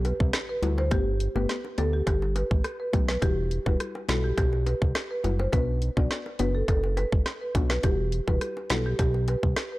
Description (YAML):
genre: dancehall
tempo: 104 BPM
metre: 4/4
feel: straight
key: E minor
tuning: A4 = 440 Hz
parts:
  - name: fat analog bass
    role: bass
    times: 0.0-9.5 s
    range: E1 to D2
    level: -27 LUFS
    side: equal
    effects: none
  - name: island pop drum kit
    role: drums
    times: 0.0-9.7 s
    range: hi-hat, kick drum, rim click, snare drum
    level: -26 LUFS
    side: equal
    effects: none
  - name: bongos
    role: percussion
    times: 0.0-9.4 s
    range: none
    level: -38 LUFS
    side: equal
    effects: none
  - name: impact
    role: sound effects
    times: 0.5-0.9 s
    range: none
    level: barely audible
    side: none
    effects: none
  - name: marimba with medium mallets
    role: melody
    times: 0.1-9.8 s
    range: G4 to D5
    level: -31 LUFS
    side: right 1 dB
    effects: tape echo
  - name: soft round pluck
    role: accompaniment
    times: 0.6-8.9 s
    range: G3 to G4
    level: -33 LUFS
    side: left 5 dB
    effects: chorus, sidechain pumping
room: little or no reverb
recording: dark, warm production, faint mains hum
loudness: -24 LUFS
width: side -18 dB against mid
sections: 0.0-9.8 A section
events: impact 0.0-0.9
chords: 0.0 Emadd9; 0.9 Gadd9; 3.2 Emadd9; 5.5 Bm; 7.8 Emadd9